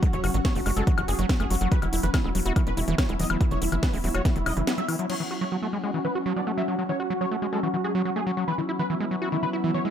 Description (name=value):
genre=psychedelic trance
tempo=142 BPM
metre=4/4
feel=straight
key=unclear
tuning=A4 = 440 Hz
part: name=wide unison lead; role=melody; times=0.0-9.9 s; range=E4 to E5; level=-32 LUFS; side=right 1 dB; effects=phaser, sidechain pumping, digital delay
part: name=evolving wavetable pad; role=sustained chords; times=0.0-9.9 s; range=F#3 to C#4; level=-33 LUFS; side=left 4 dB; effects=chorus, built-in reverb, sidechain pumping
part: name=overdriven acid bass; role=riff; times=0.0-9.9 s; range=D#3 to F#4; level=-30 LUFS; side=moving between left 3 dB and right 4 dB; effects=distortion, auto-pan, sidechain pumping, digital delay
part: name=electronic kick drum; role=drums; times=0.0-4.3 s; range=none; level=-24 LUFS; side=equal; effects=none
part: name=techno drum kit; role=drums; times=0.0-5.2 s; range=crash cymbal, hi-hat, snare drum, woodblock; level=-31 LUFS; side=left 2 dB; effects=none
part: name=airy breathy pad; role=texture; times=0.0-9.9 s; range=B3 to F#5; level=-33 LUFS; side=right 2 dB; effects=chorus, sidechain pumping
part: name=tight sequencer bass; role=bass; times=0.1-4.6 s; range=E1 to G#1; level=-28 LUFS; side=equal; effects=none
room=light reverb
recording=none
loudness=-23 LUFS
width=side -9 dB against mid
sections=0.0-5.1 A section; 5.1-9.9 B section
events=kick drops out 4.7-5.1; band accent 4.7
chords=0.0 F#5; 1.7 E5; 5.1 F#5; 8.5 E5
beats=| 0.03 0.45 0.87 1.29 | 1.72 2.14 2.56 2.98 | 3.41 3.83 4.25 4.67 | 5.10 5.52 5.94 6.36 | 6.79 7.21 7.63 8.05 | 8.48 8.90 9.32 9.74